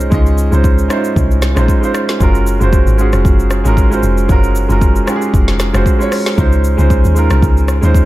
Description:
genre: amapiano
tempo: 115 BPM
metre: 4/4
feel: swing 55% on 16ths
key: Db major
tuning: A4 = 439 Hz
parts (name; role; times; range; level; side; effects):
- warm grand piano; accompaniment; 0.0-8.1 s; Ab3 to Eb5; -15 LUFS; right 2 dB; none
- deep log drum bass; bass; 0.0-8.1 s; F1 to Eb2; -12 LUFS; equal; none
- deep house drum kit; drums; 0.0-8.1 s; hi-hat, kick drum, rim click, shaker, snare drum; -14 LUFS; equal; none
room: digital ambience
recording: dark, warm production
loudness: -10 LUFS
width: side -16 dB against mid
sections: 0.0-8.1 A section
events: none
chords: 0.0 Dbmaj9; 2.2 Gbmaj9; 6.4 Dbmaj9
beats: | 0.12 0.64 1.16 1.69 | 2.21 2.73 3.25 3.77 | 4.29 4.82 5.34 5.86 | 6.38 6.90 7.42 7.95

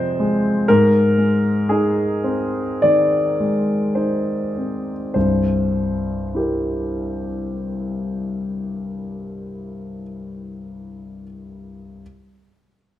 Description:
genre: neoclassical minimalist piano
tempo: 50-62 BPM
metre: 4/4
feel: rubato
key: unclear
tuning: A4 = 440 Hz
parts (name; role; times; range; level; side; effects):
- warm grand piano; solo; 0.0-12.0 s; C2 to D5; -19 LUFS; left 1 dB; none
room: moderate recital hall reverb, RT60 1.5 s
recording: none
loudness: -17 LUFS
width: side -12 dB against mid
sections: 0.0-5.2 A section; 5.2-9.8 B section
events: slowing down 0.0-5.2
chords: 0.0 Fm; 0.7 Ab; 5.2 C7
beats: | 0.68 1.70 2.82 3.96 | 5.15 6.32 7.48 8.63

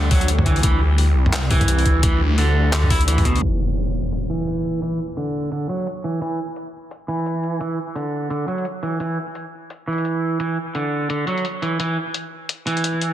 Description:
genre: half-time drum and bass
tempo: 172 BPM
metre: 4/4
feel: swing 59% on 16ths, half-time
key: unclear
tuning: A4 = 440 Hz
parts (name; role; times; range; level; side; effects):
- electric guitar at the edge of break-up; arpeggios; 0.0-13.1 s; B2 to E4; -23 LUFS; right 2 dB; vintage 12-bit sampler grit, low-pass filter, tape echo
- phased detuned saw bass; bass; 0.0-3.4 s; C2 to D2; -18 LUFS; equal; phaser
- pulsing gated texture; texture; 0.0-3.4 s; G3 to G4; -34 LUFS; right 3 dB; chorus, built-in reverb
- boom bap sampler-style drum kit; drums; 0.1-13.1 s; handclaps, hi-hat, toms; -25 LUFS; left 1 dB; low-pass filter on snare, low-pass filter on hats, low-pass filter on toms
- electronic kick drum; drums; 0.1-3.3 s; none; -20 LUFS; equal; none
- impact; sound effects; 3.4-4.8 s; none; -24 LUFS; equal; none
room: moderate echo chamber reverb, RT60 1.6 s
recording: dense, heavily limited modern master, low-pass filter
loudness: -19 LUFS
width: side -12 dB against mid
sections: 0.0-3.4 A section; 3.4-13.1 B section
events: drop 0.0-3.4; impact 3.4-4.8; filter sweep on drum 3.4-13.1; filter sweep on clean electric guitar 3.4-13.1; filter sweep 3.4-13.1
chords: 0.0 Dsus4; 3.4 Dsus2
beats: 0.29 | 0.64 0.98 1.33 1.68 | 2.03 2.38 2.73 3.08 | 3.42 3.77 4.12 4.47 | 4.82 5.17 5.52 5.87 | 6.22 6.57 6.91 7.26 | 7.61 7.96 8.31 8.66 | 9.01 9.36 9.70 10.05 | 10.40 10.75 11.10 11.45 | 11.80 12.15 12.49 12.84

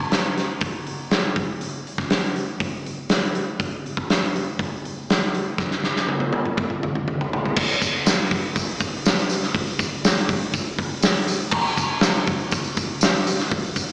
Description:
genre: rock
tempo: 121 BPM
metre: 4/4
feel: straight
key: none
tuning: none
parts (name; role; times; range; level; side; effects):
- big rock drum kit; drums; 0.0-13.9 s; crash cymbal, hi-hat, kick drum, snare drum, toms; -20 LUFS; equal; none
- tambourine; percussion; 7.7-13.9 s; none; -29 LUFS; equal; none
room: moderate club reverb, RT60 0.8 s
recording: live gig heard through the venue's PA, recital hall reverb, small speaker sound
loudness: -20 LUFS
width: side -38 dB against mid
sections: 0.0-7.6 A section; 7.6-13.9 B section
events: drum fill 5.6-7.6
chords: none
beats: 0.12 0.62 1.11 | 1.61 2.11 2.60 3.10 | 3.60 4.09 4.59 5.09 | 5.58 6.08 6.58 7.07 | 7.57 8.06 8.56 9.05 | 9.55 10.04 10.54 11.03 | 11.53 12.02 12.52 13.02 | 13.51

